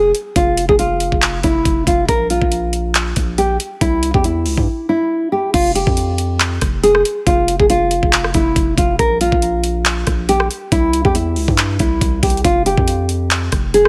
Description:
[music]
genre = hip hop, trap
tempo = 139 BPM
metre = 4/4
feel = half-time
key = F harmonic minor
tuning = A4 = 440 Hz
[part]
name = nylon-string guitar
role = melody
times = 0.0-13.9 s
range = E4 to Bb4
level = -18 LUFS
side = equal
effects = none
[part]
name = long sustained 808-style bass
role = bass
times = 0.0-13.9 s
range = F1 to G2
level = -23 LUFS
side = equal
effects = none
[part]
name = trap drum kit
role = drums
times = 0.1-13.9 s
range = crash cymbal, handclaps, hi-hat, kick drum, rim click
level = -20 LUFS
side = equal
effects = none
[sound]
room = digital ambience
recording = none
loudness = -16 LUFS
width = mono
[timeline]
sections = 0.0-5.5 A section; 5.5-13.9 B section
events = break 4.7-5.5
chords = 0.0 N.C.; 2.1 Bb5; 3.8 C; 5.5 Fsus2; 9.0 Bb5; 10.7 C; 12.4 Fsus2

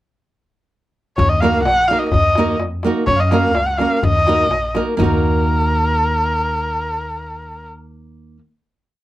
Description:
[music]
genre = balkan folk, Balkan wedding band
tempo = 126 BPM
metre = 2/4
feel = swing 54% on 16ths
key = Eb minor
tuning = A4 = 441 Hz
[part]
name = dark erhu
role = melody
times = 1.2-7.7 s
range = Bb4 to Gb5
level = -18 LUFS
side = equal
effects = none
[part]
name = upright bass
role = bass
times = 1.2-8.4 s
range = Bb1 to Gb2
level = -21 LUFS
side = equal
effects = none
[part]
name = darbuka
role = percussion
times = 1.2-5.2 s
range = none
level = -21 LUFS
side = left 2 dB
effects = none
[part]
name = nylon-string guitar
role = accompaniment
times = 1.4-8.4 s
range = Bb3 to Bb4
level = -20 LUFS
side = right 2 dB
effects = none
[sound]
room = light reverb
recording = none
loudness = -14 LUFS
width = side -15 dB against mid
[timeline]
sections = 1.2-5.0 A section; 5.0-6.9 final chord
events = none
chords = 1.2 Ebm; 3.1 Gb; 4.0 Ebm

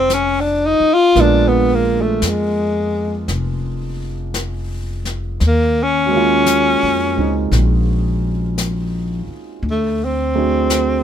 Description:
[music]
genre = jazz ballad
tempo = 57 BPM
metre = 4/4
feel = swing 66% on 8ths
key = Bb minor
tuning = A4 = 440 Hz
[part]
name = warm tenor saxophone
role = melody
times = 0.0-11.0 s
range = Ab3 to F4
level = -15 LUFS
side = left 2 dB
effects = none
[part]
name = warm upright piano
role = accompaniment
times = 0.0-11.0 s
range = F#3 to G#4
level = -22 LUFS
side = right 6 dB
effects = none
[part]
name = upright bass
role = bass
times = 0.0-11.0 s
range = F1 to F2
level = -20 LUFS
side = equal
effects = none
[part]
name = jazz brush drum kit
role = drums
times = 0.1-11.0 s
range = brushed snare drum, hi-hat, snare drum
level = -26 LUFS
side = left 4 dB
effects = none
[sound]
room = light reverb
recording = minimal, uncompressed stereo recording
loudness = -14 LUFS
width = side -9 dB against mid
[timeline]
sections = 0.0-11.0 A section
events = tenor saxophone solo 0.0-11.0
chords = 0.0 Bbm11 (rootless); 1.2 Bb7b9; 5.4 Ebm11; 9.6 D7#11

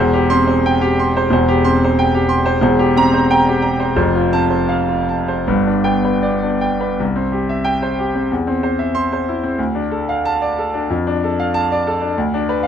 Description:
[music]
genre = classical, romantic character piece for solo piano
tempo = 74-97 BPM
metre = 2/4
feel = rubato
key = C major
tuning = A4 = 443 Hz
[part]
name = clear concert grand piano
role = solo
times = 0.0-12.7 s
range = E1 to C6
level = -14 LUFS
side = equal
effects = none
[sound]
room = light reverb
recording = close, detailed microphones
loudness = -14 LUFS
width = side -8 dB against mid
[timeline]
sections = 0.0-7.0 A section; 7.0-12.7 B section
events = none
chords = 0.0 C/E; 2.6 C7/E; 4.0 F; 5.4 G; 7.0 C; 8.3 C/E; 9.6 Dm; 10.9 Dm/F; 12.2 Bm/D

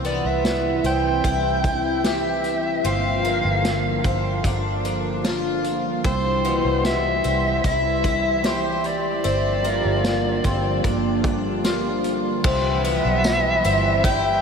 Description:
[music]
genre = dream pop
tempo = 75 BPM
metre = 4/4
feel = straight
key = C major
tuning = A4 = 441 Hz
[part]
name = phased analog pad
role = sustained chords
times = 0.0-14.4 s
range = C3 to B4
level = -25 LUFS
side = right 1 dB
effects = phaser, chorus
[part]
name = picked twelve-string acoustic guitar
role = arpeggios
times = 0.0-14.4 s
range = B2 to G4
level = -26 LUFS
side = left 3 dB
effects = wide subtle chorus, tape echo
[part]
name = vintage muted fingered electric bass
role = bass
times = 0.0-14.4 s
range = G1 to C2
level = -27 LUFS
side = equal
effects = none
[part]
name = vintage drum kit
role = drums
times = 0.0-14.2 s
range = crash cymbal, hi-hat, kick drum, snare drum, tambourine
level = -27 LUFS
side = equal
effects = none
[part]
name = warm soprano saxophone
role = melody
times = 0.1-14.4 s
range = C5 to G5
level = -24 LUFS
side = equal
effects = tape echo
[sound]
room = wet huge ambient reverb, RT60 7.4 s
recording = dreamy mix soaked in reverb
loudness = -19 LUFS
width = side -6 dB against mid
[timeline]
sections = 0.0-12.4 A section; 12.4-14.4 B section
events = none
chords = 0.0 Cmaj7; 2.8 Gm7; 6.0 Cmaj7; 9.2 Gm7; 12.4 Cmaj7

